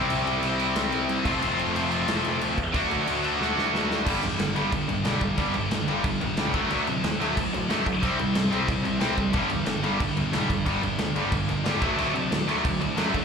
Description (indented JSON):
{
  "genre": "punk rock",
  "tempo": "182 BPM",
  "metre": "4/4",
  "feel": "straight",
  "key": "unclear",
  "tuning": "A4 = 440 Hz",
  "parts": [
    { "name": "cranked stack guitar", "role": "riff", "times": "0.0-13.2 s", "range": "G2 to F#4", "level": "-29 LUFS", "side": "right 13 dB", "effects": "overdrive" },
    { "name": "distorted electric guitar", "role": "riff", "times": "0.0-13.2 s", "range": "G2 to F#4", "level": "-28 LUFS", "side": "left 8 dB", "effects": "overdrive, slapback echo" },
    { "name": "scooped high-gain guitar", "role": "riff", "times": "0.0-13.2 s", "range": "F2 to D4", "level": "-30 LUFS", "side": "equal", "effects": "distortion" },
    { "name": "fuzz picked electric bass", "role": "bass", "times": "0.0-13.2 s", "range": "F1 to D3", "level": "-32 LUFS", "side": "right 1 dB", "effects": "overdrive" },
    { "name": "big rock drum kit", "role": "drums", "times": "0.1-13.2 s", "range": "crash cymbal, kick drum, snare drum", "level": "-30 LUFS", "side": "equal", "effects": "none" }
  ],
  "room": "little or no reverb",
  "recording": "live gig heard through the venue's PA, club reverb",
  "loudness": "-23 LUFS",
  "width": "side -6 dB against mid",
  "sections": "0.0-4.1 A section; 4.1-13.2 B section",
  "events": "half time 0.0-4.1; drum fill 3.4-4.1",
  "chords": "0.0 C; 1.3 F; 2.7 D; 4.1 G5; 6.5 D; 8.0 C5; 9.3 G5; 11.8 D"
}